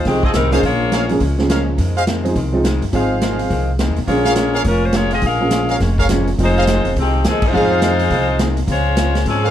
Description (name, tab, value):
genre	jazz, big band swing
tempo	209 BPM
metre	4/4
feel	swing 62% on 8ths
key	F minor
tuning	A4 = 443 Hz
part	clear saxophone section	melody	0.0-1.2, 4.1-9.5 s	Eb3 to F5	-19 LUFS	left 2 dB	plate reverb
part	upright bass	bass	0.0-9.5 s	E1 to Ab2	-19 LUFS	equal	none
part	archtop guitar, miked and amplified	accompaniment	0.1-9.5 s	F2 to Db4	-27 LUFS	left 4 dB	none
part	clear baby grand piano	accompaniment	0.1-8.3 s	F3 to Ab4	-20 LUFS	right 2 dB	none
part	swinging big-band drum kit	drums	0.1-9.3 s	crash cymbal, hi-hat, kick drum, snare drum	-22 LUFS	right 1 dB	none
part	clear trumpet section	stabs	0.2-9.5 s	F4 to F5	-21 LUFS	equal	none
room	light reverb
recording	none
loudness	-14 LUFS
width	side -11 dB against mid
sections	0.0-9.5 A section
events	band accent 7.4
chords	0.0 Fm7; 0.6 Bbm7; 1.8 Fm7; 4.1 Bbm7; 6.4 Fm7; 8.7 Dbmaj7